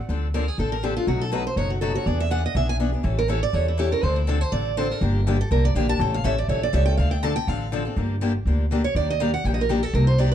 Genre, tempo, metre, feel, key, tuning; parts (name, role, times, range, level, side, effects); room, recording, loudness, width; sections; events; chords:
acoustic string swing (jazz manouche); 244 BPM; 4/4; swing 54% on 8ths; D minor; A4 = 439 Hz
picked steel-string acoustic guitar; accompaniment; 0.1-10.3 s; B2 to A4; -27 LUFS; left 3 dB
upright bass; bass; 0.1-10.3 s; F#1 to E2; -23 LUFS; equal
picked steel-string acoustic guitar; melody; 0.3-10.3 s; E4 to A5; -26 LUFS; right 3 dB; plate reverb
light reverb; dark, warm production; -20 LUFS; side -10 dB against mid
0.1-8.0 A section; 8.0-10.3 A section
steel-string acoustic guitar solo 0.1-10.3
0.1 Dm7; 1.1 B7; 2.1 E7; 3.0 A7; 4.0 Dm7; 5.0 Gm7; 6.0 A7; 7.0 Dm7; 8.0 Gm7; 9.0 Ebmaj7